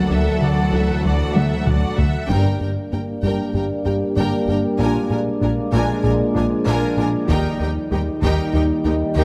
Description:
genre	cinematic, hybrid orchestral and electronic film score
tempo	96 BPM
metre	4/4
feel	straight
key	unclear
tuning	A4 = 440 Hz
part	bright symphonic violin section	melody	0.0-2.3 s	E5 to F#5	-32 LUFS	equal	low-pass filter
part	clear symphonic violin section	second line	0.0-9.2 s	A4 to Ab5	-31 LUFS	equal	none
part	clear symphonic viola section	accompaniment	0.0-9.2 s	D4 to F#5	-30 LUFS	equal	low-pass filter
part	analog drone	sustained chords	0.0-9.2 s	Eb3 to Eb5	-28 LUFS	equal	chorus, low-pass filter
part	rich symphonic cello section	bass	0.0-9.2 s	Eb2 to F#3	-29 LUFS	equal	none
part	rich symphonic double bass section	bass	0.0-9.2 s	G1 to Eb2	-28 LUFS	equal	none
part	thumb-piano-like synth pluck	arpeggios	0.1-9.2 s	D3 to Ab4	-30 LUFS	equal	none
part	rubbery square bass	riff	0.1-9.2 s	D2 to D3	-25 LUFS	equal	low-pass filter
part	taiko ensemble	drums	1.4-3.5, 7.3-8.5 s	none	-26 LUFS	equal	none
part	mellow French horn section	sustained chords	2.3-9.2 s	G3 to Eb4	-27 LUFS	equal	low-pass filter
room	moderate scoring stage reverb, RT60 1.6 s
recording	none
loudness	-19 LUFS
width	mono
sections	0.0-2.3 A section; 2.3-9.2 B section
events	drum fill 1.4-2.3; band accent 2.3-2.9; filter sweep 2.3-9.2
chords	0.0 Dadd9; 2.3 Gm; 4.8 Bb7; 7.3 Eb

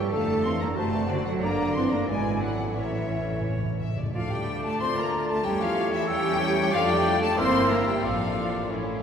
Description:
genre	quick classical-period movement for symphony orchestra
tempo	92 BPM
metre	2/4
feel	rubato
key	D minor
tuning	A4 = 441 Hz
part	rich studio violin section	melody	0.0-8.7 s	A4 to C6	-32 LUFS	left 5 dB	none
part	clear studio violin section	second line	0.0-9.0 s	A3 to C6	-34 LUFS	left 2 dB	none
part	hollow concert flute	second line	0.0-8.7 s	D5 to C6	-35 LUFS	left 2 dB	none
part	warm clarinet	second line	0.0-9.0 s	F4 to D5	-33 LUFS	equal	none
part	dark bassoon	accompaniment	0.0-3.8 s	D3 to E3	-36 LUFS	equal	none
part	dark studio viola section	accompaniment	0.0-8.7 s	C#4 to C5	-32 LUFS	right 2 dB	none
part	dark French horn section	sustained chords	0.0-9.0 s	F#2 to F4	-33 LUFS	left 1 dB	none
part	rich studio cello section	bass	0.0-8.7 s	D3 to C4	-31 LUFS	right 2 dB	none
part	rich studio double bass section	bass	0.0-9.0 s	F1 to F2	-33 LUFS	right 2 dB	none
part	timpani	percussion	2.8-4.1 s	A2	-34 LUFS	equal	none
part	mellow trumpet	stabs	4.1-9.0 s	C#5 to E5	-32 LUFS	left 1 dB	none
room	wet cathedral reverb, RT60 4.3 s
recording	recorded in a church or concert hall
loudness	-23 LUFS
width	side -7 dB against mid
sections	0.0-4.1 A section; 4.1-9.0 B section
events	timpani fill 2.8-4.1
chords	0.1 Dm/F; 0.8 D7/F#; 1.4 Gm; 2.1 E7/G#; 2.8 A; 4.1 Dm; 5.5 A7/E; 6.7 Dm/F; 7.4 Edim/G; 8.0 Dm/A

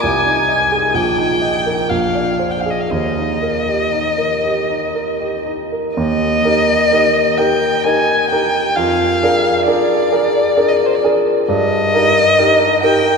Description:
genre	classical, romantic duo for violin and grand piano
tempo	57-68 BPM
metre	3/4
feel	rubato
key	Eb major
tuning	A4 = 440 Hz
part	dark violin	melody	0.0-13.2 s	C5 to Ab5	-16 LUFS	left 1 dB	none
part	warm grand piano	accompaniment	0.0-13.2 s	Bb1 to Eb5	-16 LUFS	equal	none
room	wet cathedral reverb, RT60 5.1 s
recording	minimal, uncompressed stereo recording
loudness	-13 LUFS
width	side -5 dB against mid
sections	0.0-6.0 A section; 6.0-13.2 A section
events	none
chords	0.0 Ab/C; 0.9 Eb/Bb; 1.9 Bb9; 2.9 Eb; 8.8 Bb7/F; 11.5 Eb/G

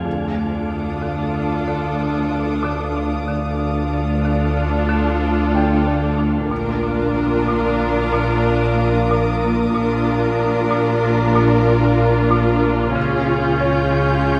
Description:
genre	cinematic, suspense film score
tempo	93 BPM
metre	5/4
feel	straight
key	unclear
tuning	A4 = 439 Hz
part	muted symphonic violin section	melody	0.0-14.4 s	Ab4 to Bb4	-27 LUFS	equal	none
part	wind-like tuned noise texture	sustained chords	0.0-14.4 s	D4 to F5	-30 LUFS	equal	built-in reverb
part	metallic inharmonic drone	drone	0.0-14.4 s	Bb1 to D2	-30 LUFS	equal	none
part	bright baby grand piano	texture	0.0-14.4 s	Db5 to D6	-32 LUFS	equal	none
part	muted symphonic viola section	accompaniment	0.1-14.4 s	Db4 to F4	-24 LUFS	equal	none
part	marimba with hard mallets	riff	0.1-14.4 s	Bb2 to D4	-26 LUFS	equal	none
part	muted symphonic cello section	bass	0.1-14.4 s	D2 to Db3	-27 LUFS	equal	none
part	muted symphonic double bass section	bass	0.1-14.4 s	Bb1 to D2	-28 LUFS	equal	none
part	muted symphonic violin section	texture	0.1-14.4 s	Db6 to G6	-36 LUFS	equal	none
room	wet scoring stage reverb, RT60 1.7 s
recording	none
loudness	-18 LUFS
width	mono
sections	0.0-14.4 A section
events	none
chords	0.1 Dm; 6.5 Bb; 13.0 Db

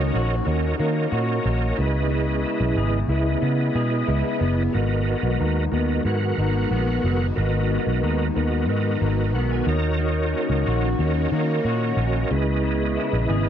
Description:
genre	indie pop, bedroom pop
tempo	91 BPM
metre	4/4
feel	straight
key	G# minor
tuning	A4 = 436 Hz
part	bright tonewheel organ	accompaniment	0.0-13.5 s	E4 to A#5	-27 LUFS	right 4 dB	chorus vibrato, fast rotary speaker, cassette tape
part	electric guitar through a small old amp	accompaniment	0.0-13.5 s	G#2 to G#4	-28 LUFS	left 6 dB	wide subtle chorus, warbly pitch drift
part	string machine, violas	sustained chords	0.0-13.5 s	C#3 to F#4	-29 LUFS	equal	ensemble chorus
part	vintage muted picked electric bass	bass	0.0-13.5 s	F#1 to D#3	-23 LUFS	equal	none
room	little or no reverb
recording	dry, close 1970s-style studio recording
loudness	-20 LUFS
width	side -9 dB against mid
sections	0.0-13.5 A section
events	tonewheel organ fill 8.7-10.0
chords	0.0 D#m7; 1.8 C#m7; 4.7 G#m7; 9.7 D#m7; 12.3 C#m7

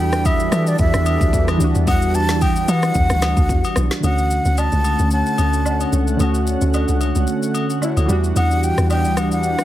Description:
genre	amapiano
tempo	111 BPM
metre	4/4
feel	swing 55% on 16ths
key	D major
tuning	A4 = 438 Hz
part	breathy mellow silver concert flute	melody	0.0-9.6 s	D5 to A5	-23 LUFS	left 1 dB	tape echo
part	warm analog keys	accompaniment	0.0-9.6 s	D3 to F#4	-23 LUFS	right 1 dB	chorus
part	lush unison pad	sustained chords	0.0-9.6 s	D3 to F#5	-24 LUFS	right 1 dB	chorus, sidechain pumping
part	deep log drum bass	bass	0.0-9.6 s	B1 to E3	-19 LUFS	equal	none
part	deep house drum kit	drums	0.1-9.6 s	kick drum, rim click, shaker, snare drum	-22 LUFS	equal	none
part	agogo bells and woodblock	percussion	0.3-9.3 s	none	-29 LUFS	left 4 dB	none
room	little or no reverb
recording	heavily compressed radio sound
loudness	-15 LUFS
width	side -13 dB against mid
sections	0.0-4.0 A section; 4.0-9.6 B section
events	none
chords	0.0 Em9; 4.0 Dmaj7; 8.1 Em9

